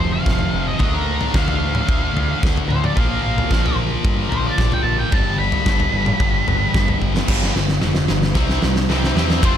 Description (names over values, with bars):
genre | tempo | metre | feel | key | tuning
quiet-loud alternative rock | 111 BPM | 4/4 | straight | unclear | A4 = 440 Hz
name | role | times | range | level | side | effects
octave-fuzz lead guitar | melody | 0.0-9.6 s | Bb4 to B5 | -24 LUFS | equal | distortion
high-gain distorted guitar | riff | 0.0-9.6 s | F2 to F4 | -22 LUFS | left 1 dB | distortion
growling picked electric bass | bass | 0.0-9.6 s | F1 to G2 | -23 LUFS | equal | overdrive
big rock drum kit | drums | 0.3-9.6 s | crash cymbal, kick drum, ride cymbal, snare drum, toms | -19 LUFS | equal | none
room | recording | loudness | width
little or no reverb | none | -16 LUFS | side -10 dB against mid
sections
0.0-7.3 A section; 7.3-9.4 B section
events
lead electric guitar solo 0.0-7.3; drum fill 7.0, 7.3-9.4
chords
0.0 F5; 0.8 Dm; 3.0 Bb5; 5.1 G; 7.3 G5; 8.4 C